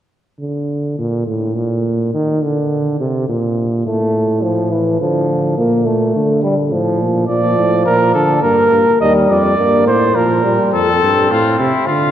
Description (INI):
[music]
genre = classical, imitative canzona for brass ensemble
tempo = 105 BPM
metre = 3/4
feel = straight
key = Bb major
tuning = A4 = 439 Hz
[part]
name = mellow bass trombone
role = bass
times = 0.4-12.1 s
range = Eb2 to Eb3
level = -17 LUFS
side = right 1 dB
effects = none
[part]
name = warm euphonium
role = accompaniment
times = 3.9-10.7 s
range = E3 to Bb3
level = -16 LUFS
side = equal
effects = none
[part]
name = dark trumpet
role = second line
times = 7.3-12.1 s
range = C4 to Eb5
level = -15 LUFS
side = right 2 dB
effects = none
[part]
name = warm trumpet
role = melody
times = 10.7-12.1 s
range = E4 to A4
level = -14 LUFS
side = left 6 dB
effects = none
[sound]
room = wet church reverb, RT60 2.9 s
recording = worn, warbling old tape, cassette tape, warbly pitch drift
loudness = -12 LUFS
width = side -10 dB against mid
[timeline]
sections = 0.4-12.1 A section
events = none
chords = 0.4 Bb/D; 1.6 N.C.; 2.1 Cmadd9; 3.3 N.C.; 3.9 F/A; 5.0 Dm; 5.6 Bb; 6.7 F/A; 7.3 Bb; 8.4 Gm; 9.0 Eb; 10.2 Bb5; 10.7 F